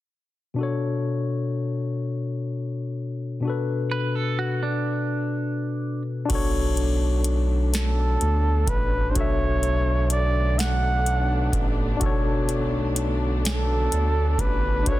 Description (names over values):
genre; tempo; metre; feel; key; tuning
slow six-eight R&B; 42 BPM (dotted quarters); 6/8; straight; B minor; A4 = 440 Hz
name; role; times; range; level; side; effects
barky tine electric piano; accompaniment; 0.5-15.0 s; B2 to E5; -27 LUFS; left 3 dB; overdrive
semi-hollow electric guitar; second line; 3.9-6.0 s; D4 to B4; -28 LUFS; right 4 dB; none
muted studio string section; sustained chords; 6.3-15.0 s; D3 to D4; -33 LUFS; right 1 dB; none
smooth synth bass; bass; 6.3-15.0 s; A1 to D2; -23 LUFS; equal; none
booming analog drum machine; drums; 6.3-15.0 s; crash cymbal, hi-hat, kick drum, snare drum; -27 LUFS; equal; none
warm flugelhorn; melody; 7.7-15.0 s; A4 to F#5; -27 LUFS; right 2 dB; none
room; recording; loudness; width
light reverb; dense, heavily limited modern master; -22 LUFS; side -15 dB against mid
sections
0.6-6.3 A section; 6.3-15.0 B section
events
none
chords
0.6 Bm9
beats
| 0.58 2.01 | 3.44 4.87 | 6.30 7.73 | 9.15 10.58 | 12.01 13.44 | 14.87